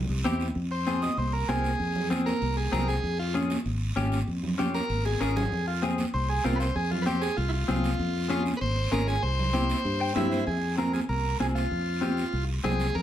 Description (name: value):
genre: latin, cumbia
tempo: 194 BPM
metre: 4/4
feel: straight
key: F minor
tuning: A4 = 440 Hz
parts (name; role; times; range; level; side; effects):
- fingered electric bass; bass; 0.0-13.0 s; Ab1 to G2; -29 LUFS; equal; none
- semi-hollow electric guitar; accompaniment; 0.2-12.9 s; C4 to G5; -30 LUFS; left 2 dB; wide subtle chorus
- congas; percussion; 0.2-12.8 s; none; -33 LUFS; right 1 dB; none
- guiro; percussion; 0.2-13.0 s; none; -41 LUFS; right 4 dB; none
- combo organ; melody; 0.7-13.0 s; E4 to Eb5; -30 LUFS; right 1 dB; phaser, plate reverb
room: wet small room reverb, RT60 0.5 s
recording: heard from further back in the room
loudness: -25 LUFS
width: side -11 dB against mid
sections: 0.6-10.5 A section; 10.5-13.0 B section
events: transistor combo organ solo 0.6-10.5; drum fill 5.1-5.5; clean electric guitar fill 9.9-10.5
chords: 0.0 C; 0.6 Fm; 3.0 Db; 5.5 Fm; 8.0 Db/F; 9.2 C; 10.5 Fm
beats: 0.25 | 0.56 0.87 1.18 1.49 | 1.80 2.11 2.42 2.73 | 3.04 3.35 3.66 3.97 | 4.28 4.59 4.90 5.21 | 5.52 5.83 6.14 6.45 | 6.76 7.07 7.38 7.68 | 8.00 8.30 8.61 8.92 | 9.23 9.54 9.85 10.16 | 10.47 10.78 11.09 11.40 | 11.71 12.02 12.33 12.64 | 12.95